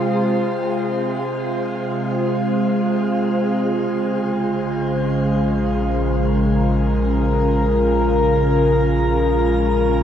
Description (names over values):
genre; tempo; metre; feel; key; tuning
ambient; free time; none; none; Bb minor; A4 = 439 Hz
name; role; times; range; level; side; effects
evolving wavetable pad; sustained chords; 0.0-10.0 s; C3 to C5; -17 LUFS; equal; chorus, built-in reverb
round analog bass; bass; 3.6-10.0 s; Bb1; -22 LUFS; equal; none
room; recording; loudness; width
wet shimmer reverb, RT60 7.1 s; none; -17 LUFS; side -9 dB against mid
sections
0.0-3.6 A section; 3.6-10.0 B section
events
none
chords
0.0 Fm; 3.6 Bbm7